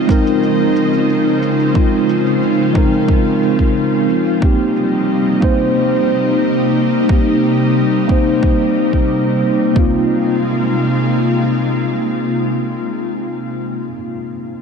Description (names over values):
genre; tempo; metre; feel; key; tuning
sunset chillout; 90 BPM; 4/4; straight; Ab major; A4 = 436 Hz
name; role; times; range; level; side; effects
mellow tine electric piano; accompaniment; 0.0-14.6 s; Ab3 to C5; -16 LUFS; equal; slow stereo tremolo, auto-pan, vintage 12-bit sampler grit, low-pass filter, diffuse ambient delay
ethereal airy pad; sustained chords; 0.0-13.2 s; C3 to F4; -17 LUFS; left 1 dB; ensemble chorus, built-in reverb
deep house drum kit; drums; 0.1-9.9 s; kick drum, toms; -15 LUFS; equal; none
shaker; drums; 0.1-9.7 s; none; -45 LUFS; equal; none
room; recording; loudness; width
wet plate reverb, RT60 1.8 s; dreamy mix soaked in reverb; -13 LUFS; side -6 dB against mid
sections
0.0-9.8 A section; 9.8-12.4 B section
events
filter sweep on tine electric piano 0.0-9.8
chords
0.0 Dbmaj9; 4.4 Cm7; 9.8 Ab69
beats
0.42 1.09 | 1.76 2.42 3.09 3.76 | 4.42 5.09 5.76 6.42 | 7.09 7.76 8.42 9.09 | 9.76 10.42 11.09 11.76